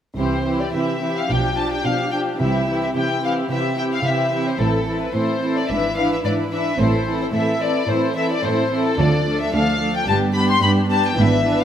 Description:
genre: quick classical-period movement for symphony orchestra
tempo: 109 BPM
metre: 4/4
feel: rubato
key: C major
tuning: A4 = 442 Hz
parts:
  - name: warm studio violin section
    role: melody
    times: 0.2-11.6 s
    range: A4 to C6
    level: -22 LUFS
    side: left 4 dB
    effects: none
  - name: warm chamber violin section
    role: second line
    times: 0.2-11.6 s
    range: D4 to B4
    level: -24 LUFS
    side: left 2 dB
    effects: none
  - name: dark studio viola section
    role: accompaniment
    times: 0.2-11.6 s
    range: E3 to D4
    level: -23 LUFS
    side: right 2 dB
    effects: none
  - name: clear chamber double bass section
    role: bass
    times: 0.2-11.6 s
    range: G1 to D2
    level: -25 LUFS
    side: right 3 dB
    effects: none
  - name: warm studio cello section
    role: bass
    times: 0.2-11.6 s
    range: D2 to C3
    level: -25 LUFS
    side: right 2 dB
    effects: none
room: moderate scoring stage reverb, RT60 1.6 s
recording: none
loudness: -17 LUFS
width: side -9 dB against mid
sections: 0.2-11.6 A section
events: none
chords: 0.2 C; 1.3 G7/B; 2.4 C; 4.6 Am; 5.7 E7/G#; 6.8 Am; 9.0 Dm; 10.1 G

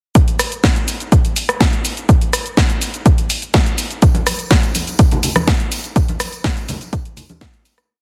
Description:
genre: house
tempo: 124 BPM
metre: 4/4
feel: straight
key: none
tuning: none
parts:
  - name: electronic kick drum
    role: drums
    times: 0.2-7.5 s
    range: none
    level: -16 LUFS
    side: equal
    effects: none
  - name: house drum kit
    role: drums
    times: 0.2-7.9 s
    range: hi-hat, rim click, shaker, snare drum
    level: -21 LUFS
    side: equal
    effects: none
  - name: tambourine and congas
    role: percussion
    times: 4.0-7.9 s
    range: none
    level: -26 LUFS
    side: equal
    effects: sidechain pumping on perc
room: light reverb, digital ambience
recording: heavily compressed radio sound, multiband compression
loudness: -16 LUFS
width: mono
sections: 0.2-7.9 drop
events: drop 0.2-7.9; fade-out 5.3-7.9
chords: none

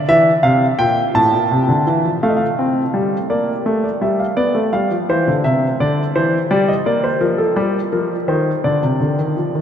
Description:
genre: classical, baroque-style two-part invention for grand piano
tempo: 56 BPM (dotted quarters)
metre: 6/8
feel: straight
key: F major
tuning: A4 = 440 Hz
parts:
  - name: warm concert grand piano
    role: solo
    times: 0.0-9.6 s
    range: A2 to A5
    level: -14 LUFS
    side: equal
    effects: none
room: wet cathedral reverb, RT60 6.0 s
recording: in a vast, echoing space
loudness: -14 LUFS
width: side -9 dB against mid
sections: 0.0-2.2 A section; 2.2-9.6 B section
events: none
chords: 0.1 C7; 1.1 F/A; 3.3 Bb; 4.4 G7; 5.4 C; 6.5 Gm; 7.6 Cm; 8.6 Cmadd9

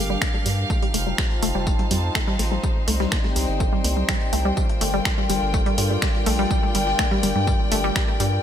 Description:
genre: melodic techno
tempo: 124 BPM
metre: 4/4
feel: straight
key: G minor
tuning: A4 = 442 Hz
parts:
  - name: dark analog pad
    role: sustained chords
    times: 0.0-8.4 s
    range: G3 to A5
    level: -32 LUFS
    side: equal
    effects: chorus, sidechain pumping
  - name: wide unison pluck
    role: arpeggios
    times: 0.0-8.3 s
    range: G3 to Bb3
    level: -26 LUFS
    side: equal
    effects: sidechain pumping, ping-pong delay
  - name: round analog bass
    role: bass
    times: 0.0-8.4 s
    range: F1 to G2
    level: -25 LUFS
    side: equal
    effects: sidechain pumping
  - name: dark studio string section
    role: texture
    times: 0.0-8.4 s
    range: D4 to A5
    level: -27 LUFS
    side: left 3 dB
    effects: sidechain pumping
  - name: dusty soul sampler-style drum kit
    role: drums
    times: 0.2-8.3 s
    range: hi-hat, snare drum, tambourine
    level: -37 LUFS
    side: left 3 dB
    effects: none
  - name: electronic kick drum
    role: drums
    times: 0.2-8.1 s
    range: none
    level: -24 LUFS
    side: equal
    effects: none
  - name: punchy analog drum machine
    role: drums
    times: 0.2-8.3 s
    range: finger snaps, hi-hat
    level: -27 LUFS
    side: right 1 dB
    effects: overdrive, sidechain pumping on cymbals, sidechain pumping on hats
room: light reverb, digital ambience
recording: bright 1980s-style digital production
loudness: -19 LUFS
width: side -9 dB against mid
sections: 0.0-8.4 A section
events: filter sweep on synth arpeggio sound 0.0-8.4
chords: 0.0 Gm7; 0.7 F7; 2.6 Cm; 4.6 Gm7

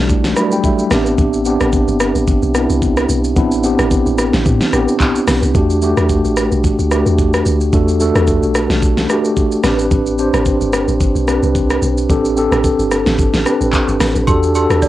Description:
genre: amapiano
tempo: 110 BPM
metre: 4/4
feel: swing 55% on 16ths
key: unclear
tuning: A4 = 440 Hz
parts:
  - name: mellow tine electric piano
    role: accompaniment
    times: 0.0-14.9 s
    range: F#3 to B5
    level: -15 LUFS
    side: equal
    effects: medium stereo tremolo, cassette tape
  - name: deep log drum bass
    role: bass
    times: 0.0-14.9 s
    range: G1 to A2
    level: -18 LUFS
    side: equal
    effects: none
  - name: smooth R&B drum kit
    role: drums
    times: 0.1-14.9 s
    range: handclaps, hi-hat, kick drum, rim click, shaker, snare drum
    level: -17 LUFS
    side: equal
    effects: cassette tape
  - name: agogo bells and woodblock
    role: percussion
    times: 14.3-14.9 s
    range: none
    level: -21 LUFS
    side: right 1 dB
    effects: none
room: light reverb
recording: home recording on cassette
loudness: -12 LUFS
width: side -14 dB against mid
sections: 0.0-14.9 A section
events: tine electric piano fill 0.1-1.2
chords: 0.0 Em11; 0.9 Am11; 5.5 Em11; 9.6 Am11; 14.3 Em11

